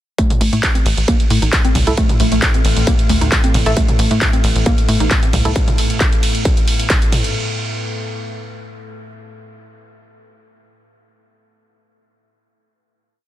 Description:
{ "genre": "driving peak-time techno", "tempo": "134 BPM", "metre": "4/4", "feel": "straight", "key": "A minor", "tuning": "A4 = 440 Hz", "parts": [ { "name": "woody wave-folded pluck", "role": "riff", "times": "0.2-5.3 s", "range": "A3 to D#4", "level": "-22 LUFS", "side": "equal", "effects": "analog chorus, sidechain pumping, tape echo" }, { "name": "metallic inharmonic drone", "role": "drone", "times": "1.3-7.4 s", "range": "A2 to A3", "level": "-24 LUFS", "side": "left 1 dB", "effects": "chorus, built-in reverb, sidechain pumping" }, { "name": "electronic kick drum", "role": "drums", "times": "0.2-7.0 s", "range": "none", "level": "-16 LUFS", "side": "equal", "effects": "distortion" }, { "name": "techno drum kit", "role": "drums", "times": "0.2-7.3 s", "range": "handclaps, hi-hat, ride cymbal, toms", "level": "-20 LUFS", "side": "right 1 dB", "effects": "none" }, { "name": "tight sequencer bass", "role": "bass", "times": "0.4-5.5 s", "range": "A1 to A2", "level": "-17 LUFS", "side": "equal", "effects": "sidechain pumping" }, { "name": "filtered dub chord stab", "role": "stabs", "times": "1.9-5.5 s", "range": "A3 to A4", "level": "-26 LUFS", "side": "right 1 dB", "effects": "wide subtle chorus, sidechain pumping, tape echo" } ], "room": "digital ambience", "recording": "dense, heavily limited modern master", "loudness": "-13 LUFS", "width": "side -13 dB against mid", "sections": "0.2-7.3 drop", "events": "drop 0.2-7.3", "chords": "0.2 A5" }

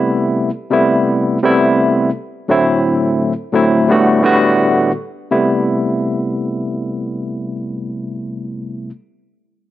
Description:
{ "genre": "hip hop", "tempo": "85 BPM", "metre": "4/4", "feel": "swing 57% on 16ths", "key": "A dorian", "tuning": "A4 = 441 Hz", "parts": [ { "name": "barky tine electric piano", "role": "accompaniment", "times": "0.0-8.9 s", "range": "A2 to F#4", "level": "-14 LUFS", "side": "equal", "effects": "overdrive, medium stereo tremolo, high-pass filter, low-pass filter, plate reverb" } ], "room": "moderate studio reverb, RT60 0.5 s", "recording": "none", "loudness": "-13 LUFS", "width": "side -14 dB against mid", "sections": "0.0-5.3 A section; 5.3-8.1 B section", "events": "none", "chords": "0.0 Am7; 2.5 D7/A; 3.9 Gmaj7/A; 5.3 Am7" }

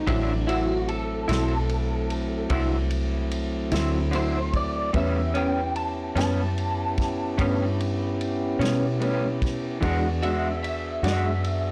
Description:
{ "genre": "slow blues", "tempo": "49 BPM (dotted quarters)", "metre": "12/8", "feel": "straight", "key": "unclear", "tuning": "A4 = 440 Hz", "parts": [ { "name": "electric guitar through a small old amp", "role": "second line", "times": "0.0-11.7 s", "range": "D4 to A5", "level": "-33 LUFS", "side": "equal", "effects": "ensemble chorus, plate reverb" }, { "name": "tonewheel organ", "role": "sustained chords", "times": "0.0-11.7 s", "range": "F#3 to G#4", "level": "-33 LUFS", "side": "equal", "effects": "slow rotary speaker" }, { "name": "vintage muted fingered electric bass", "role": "bass", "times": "0.0-11.7 s", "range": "A1 to B2", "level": "-30 LUFS", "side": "equal", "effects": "tube saturation" }, { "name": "electric guitar through a small old amp", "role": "accompaniment", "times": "0.1-11.3 s", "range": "A2 to F#4", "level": "-29 LUFS", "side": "equal", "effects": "harmonic tremolo, plate reverb" }, { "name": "warm soul drum kit", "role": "drums", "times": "0.1-11.6 s", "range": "kick drum, ride cymbal, snare drum", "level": "-35 LUFS", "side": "equal", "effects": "none" } ], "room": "moderate studio reverb, RT60 0.7 s", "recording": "blown-out, overdriven recording, overdrive", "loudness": "-25 LUFS", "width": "mono", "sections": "0.0-11.7 A section", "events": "clean electric guitar solo 0.0-11.7", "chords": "0.0 D9; 4.9 A9; 9.8 E9" }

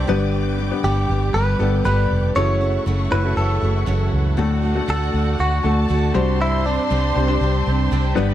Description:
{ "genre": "pop", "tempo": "119 BPM", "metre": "4/4", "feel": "straight", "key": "unclear", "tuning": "A4 = 440 Hz", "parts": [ { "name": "direct-recorded clean electric guitar", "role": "melody", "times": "0.0-8.1 s", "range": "D4 to C#5", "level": "-24 LUFS", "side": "equal", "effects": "none" }, { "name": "clear upright piano", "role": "accompaniment", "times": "0.0-8.3 s", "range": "G2 to C5", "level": "-24 LUFS", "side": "left 4 dB", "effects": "none" }, { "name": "warm studio string section", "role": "sustained chords", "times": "0.0-8.3 s", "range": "D4 to D6", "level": "-33 LUFS", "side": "left 2 dB", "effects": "none" }, { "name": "picked steel-string acoustic guitar", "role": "riff", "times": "0.0-8.3 s", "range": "F#2 to G4", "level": "-27 LUFS", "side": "right 7 dB", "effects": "none" }, { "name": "vintage muted fingered electric bass", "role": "bass", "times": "0.0-8.3 s", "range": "F1 to D2", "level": "-20 LUFS", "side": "equal", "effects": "none" }, { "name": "warm symphonic violin section", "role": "second line", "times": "4.4-8.3 s", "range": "F#4 to C6", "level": "-28 LUFS", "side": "right 1 dB", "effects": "tape echo" } ], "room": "light reverb, small room ambience", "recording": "dark, warm production", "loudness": "-17 LUFS", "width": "side -12 dB against mid", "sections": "0.0-8.3 A section", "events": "none", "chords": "0.1 G; 2.4 F#m7; 4.4 D; 6.1 Csus2" }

